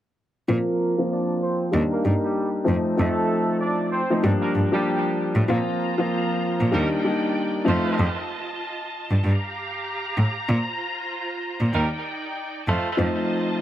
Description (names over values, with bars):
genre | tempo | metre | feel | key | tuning
hip hop | 96 BPM | 4/4 | swing 56% on 16ths | Bb major | A4 = 441 Hz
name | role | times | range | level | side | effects
dark grand piano | accompaniment | 0.5-8.0, 13.0-13.6 s | F3 to F4 | -22 LUFS | left 1 dB | cassette tape, high-pass filter, low-pass filter
clear horn section | stabs | 0.5-12.9 s | G3 to D5 | -28 LUFS | right 2 dB | high-pass filter, low-pass filter, tape echo
rich cello | bass | 0.5-13.1 s | Eb2 to Bb2 | -23 LUFS | equal | none
clear studio string section | sustained chords | 5.5-13.6 s | Eb3 to Bb5 | -30 LUFS | equal | high-pass filter, low-pass filter
room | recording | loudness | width
moderate echo chamber reverb, RT60 2.2 s | none | -21 LUFS | side -12 dB against mid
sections
0.5-5.5 A section; 5.5-13.6 B section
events
filter sweep 0.5-5.5; break 8.0-13.0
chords
0.5 Bbsus2; 1.7 Ebmaj7; 2.7 F7; 4.2 Gm7; 5.5 Bbsus2; 6.7 Ebmaj7; 7.7 F7; 9.2 Gm7; 10.5 Bbsus2; 11.7 Ebmaj7; 12.7 F7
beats
| 0.49 1.11 1.74 2.36 | 2.99 3.61 4.24 4.86 | 5.49 6.11 6.74 7.36 | 7.99 8.61 9.24 9.86 | 10.49 11.11 11.74 12.36 | 12.99 13.61